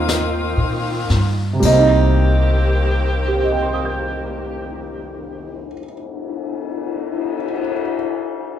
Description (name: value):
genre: jazz ballad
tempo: 38 BPM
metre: 4/4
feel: swing 66% on 8ths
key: C minor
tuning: A4 = 441 Hz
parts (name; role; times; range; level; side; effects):
- warm grand piano; accompaniment; 0.0-8.6 s; C3 to G6; -19 LUFS; right 3 dB; none
- warm saxophone section; sustained chords; 0.0-5.7 s; Eb3 to G4; -24 LUFS; left 1 dB; none
- upright bass; bass; 0.0-5.7 s; C2 to Bb2; -19 LUFS; equal; none
- jazz brush drum kit; drums; 0.1-7.7 s; brushed snare drum, crash cymbal, cymbal swell, hi-hat, kick drum, snare drum; -25 LUFS; left 6 dB; none
room: moderate large studio reverb, RT60 0.9 s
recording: band playing live in one room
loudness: -16 LUFS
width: side -10 dB against mid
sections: 0.0-1.6 A section; 1.6-8.0 B section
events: slowing down 0.0-1.6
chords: 0.0 Cm7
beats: 0.08 | 1.63 3.24 4.84 6.43